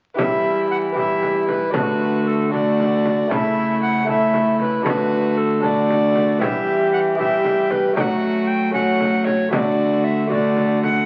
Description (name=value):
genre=classical, renaissance-style consort dance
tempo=77 BPM (dotted quarters)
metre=6/8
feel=straight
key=E dorian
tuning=A4 = 440 Hz
part: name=lute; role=accompaniment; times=0.1-11.1 s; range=C#3 to A4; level=-26 LUFS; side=equal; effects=none
part: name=bright tenor recorder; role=melody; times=0.2-11.1 s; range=A4 to G5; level=-25 LUFS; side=equal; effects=none
part: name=dark violin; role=second line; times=0.2-11.1 s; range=E4 to G4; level=-27 LUFS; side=equal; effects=none
part: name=warm viola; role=accompaniment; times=0.2-11.1 s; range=G3 to A3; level=-24 LUFS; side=equal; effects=none
part: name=rich cello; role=bass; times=0.2-11.1 s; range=C#3 to F#3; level=-32 LUFS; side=equal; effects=none
part: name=frame drum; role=percussion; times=0.2-11.1 s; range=none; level=-30 LUFS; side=equal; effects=none
room=wet stone room reverb, RT60 1.2 s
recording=very old 78 rpm record, vinyl crackle, nothing above 7.6 kHz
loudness=-19 LUFS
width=mono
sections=0.2-11.1 A section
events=none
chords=0.2 Em; 1.7 D; 3.3 A/C#; 4.9 D; 6.4 Em; 8.0 F#m; 9.5 D